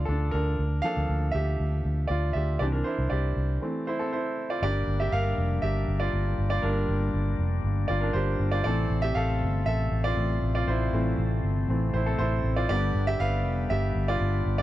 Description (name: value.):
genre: piano-driven pop.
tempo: 119 BPM.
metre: 4/4.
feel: straight.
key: unclear.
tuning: A4 = 439 Hz.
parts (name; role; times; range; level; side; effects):
clear concert grand piano; accompaniment; 0.0-14.6 s; D3 to F5; -29 LUFS; right 2 dB; none.
vintage muted fingered electric bass; bass; 0.0-14.6 s; F1 to D2; -26 LUFS; equal; none.
bright tonewheel organ; sustained chords; 4.6-14.6 s; C3 to D4; -34 LUFS; left 8 dB; wide subtle chorus.
room: little or no reverb.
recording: dry, close 1970s-style studio recording.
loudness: -24 LUFS.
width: side -14 dB against mid.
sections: 0.0-4.6 A section; 4.6-14.6 B section.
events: grand piano solo 0.0-4.6, 4.6-14.6; stop 3.6-4.6.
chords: 0.0 Dmadd9; 0.6 Bb/D; 2.6 Cadd9; 3.6 Am; 4.6 Gm; 8.7 Am; 12.7 G.